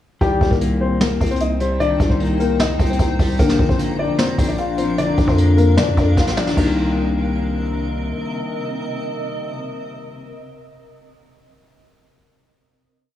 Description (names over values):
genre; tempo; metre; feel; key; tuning
hip hop, trap; 151 BPM; 4/4; half-time; C minor; A4 = 440 Hz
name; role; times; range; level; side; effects
dark baby grand piano; melody; 0.2-7.7 s; G3 to F5; -22 LUFS; left 3 dB; low-pass filter
electric guitar at the edge of break-up; accompaniment; 0.2-10.4 s; D3 to D4; -24 LUFS; left 3 dB; lush chorus, low-pass filter
granular cloud pad; sustained chords; 1.8-10.3 s; C3 to Bb5; -27 LUFS; left 1 dB; built-in reverb
growling 808-style bass; bass; 0.2-8.1 s; Bb1 to F3; -20 LUFS; equal; none
vintage brush drum kit; drums; 0.2-6.7 s; crash cymbal, hi-hat, kick drum, snare drum; -20 LUFS; equal; none
room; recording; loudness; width
light reverb, studio ambience; worn, warbling old tape, cassette tape, warbly pitch drift, small room reverb; -16 LUFS; side -12 dB against mid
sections
0.2-6.6 hook; 6.6-9.7 final chord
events
drum fill 6.2-6.6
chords
0.2 Cm7; 3.4 Bb; 6.6 Cm7